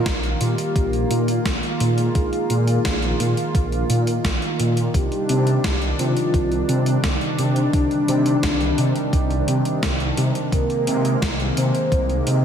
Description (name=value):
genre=synthwave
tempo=86 BPM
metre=4/4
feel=straight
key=C minor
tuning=A4 = 440 Hz
part: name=soft octave-layered synth lead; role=melody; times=0.0-12.4 s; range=D4 to C5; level=-26 LUFS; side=left 1 dB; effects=chorus, tremolo, cassette tape, ping-pong delay
part: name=chorused pulse-width pad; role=sustained chords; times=0.0-12.4 s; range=C3 to F4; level=-24 LUFS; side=equal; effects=none
part: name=wide detuned saw bass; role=bass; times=0.1-12.4 s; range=Bb1 to C3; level=-22 LUFS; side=equal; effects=chorus, sidechain pumping
part: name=electronic kick drum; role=drums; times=0.1-12.1 s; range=none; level=-22 LUFS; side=equal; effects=overdrive
part: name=gated 80s digital drum machine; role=drums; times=0.1-12.4 s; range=hi-hat, snare drum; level=-28 LUFS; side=equal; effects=gated reverb, gated reverb snare, overdrive
room=moderate plate reverb, RT60 2.6 s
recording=dreamy mix soaked in reverb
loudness=-18 LUFS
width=side -8 dB against mid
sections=0.0-12.4 A section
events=none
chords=0.0 Bbsus4; 4.9 Cmadd9; 10.5 Abadd9/C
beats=0.06 0.76 1.46 | 2.15 2.85 3.55 4.25 | 4.95 5.64 6.34 7.04 | 7.74 8.43 9.13 9.83 | 10.53 11.22 11.92